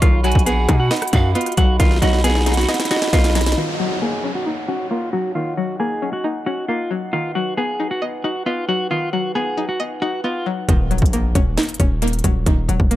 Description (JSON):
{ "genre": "hip hop, trap", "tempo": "135 BPM", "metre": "4/4", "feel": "half-time", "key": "Eb minor", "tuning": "A4 = 441 Hz", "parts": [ { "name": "clean electric guitar", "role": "melody", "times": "0.0-10.5 s", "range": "F4 to Ab4", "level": "-23 LUFS", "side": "equal", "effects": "low-pass filter, tape echo" }, { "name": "string-like resonator pluck", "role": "accompaniment", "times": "0.0-13.0 s", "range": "D#3 to D#5", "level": "-24 LUFS", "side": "left 2 dB", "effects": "chorus, low-pass filter, tape echo" }, { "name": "glass harmonica", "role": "sustained chords", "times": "0.0-10.7 s", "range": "Eb4 to B5", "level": "-31 LUFS", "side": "right 2 dB", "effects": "low-pass filter" }, { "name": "distorted 808-style bass", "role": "bass", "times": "0.0-3.6, 10.7-13.0 s", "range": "Eb1 to B2", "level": "-18 LUFS", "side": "equal", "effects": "distortion" }, { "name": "trap drum kit", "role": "drums", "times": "0.0-3.6, 10.7-13.0 s", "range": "hi-hat, kick drum, rim click, snare drum", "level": "-19 LUFS", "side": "equal", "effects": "tape echo" }, { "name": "breathy mellow pan flute", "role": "second line", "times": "0.2-3.5 s", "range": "D#5 to Ab5", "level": "-27 LUFS", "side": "right 4 dB", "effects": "tape echo" }, { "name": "downlifter and impact", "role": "sound effects", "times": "3.6-7.1, 10.7-12.5 s", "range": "none", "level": "-30 LUFS", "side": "equal", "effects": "none" } ], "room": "light reverb", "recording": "echo-heavy mix", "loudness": "-17 LUFS", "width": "side -14 dB against mid", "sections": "0.0-3.6 A section; 3.6-10.7 B section; 10.7-13.0 C section", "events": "drum fill 1.8-3.6; filter sweep 3.6-10.7; impact 10.7-12.5", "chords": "0.0 B; 3.6 Ebm7; 7.1 B; 10.7 Ebm7" }